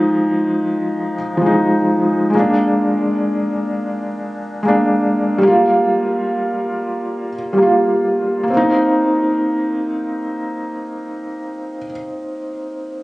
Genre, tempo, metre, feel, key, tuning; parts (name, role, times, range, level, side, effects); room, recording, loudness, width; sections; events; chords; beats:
trip hop; 78 BPM; 4/4; swing 60% on 16ths; C minor; A4 = 442 Hz
felt-muted upright piano; accompaniment; 0.0-13.0 s; F3 to F4; -15 LUFS; equal; tremolo, tape echo
light reverb, small room ambience; recorded on a phone in the room, club reverb, compression; -15 LUFS; side -19 dB against mid
0.0-8.5 A section; 8.5-11.6 B section
0.0 Fm7; 2.3 Bb7; 5.4 Gm7; 8.5 Cm7
0.04 0.81 1.58 | 2.35 3.12 3.88 4.65 | 5.42 6.19 6.96 7.73 | 8.50 9.27 10.04 10.81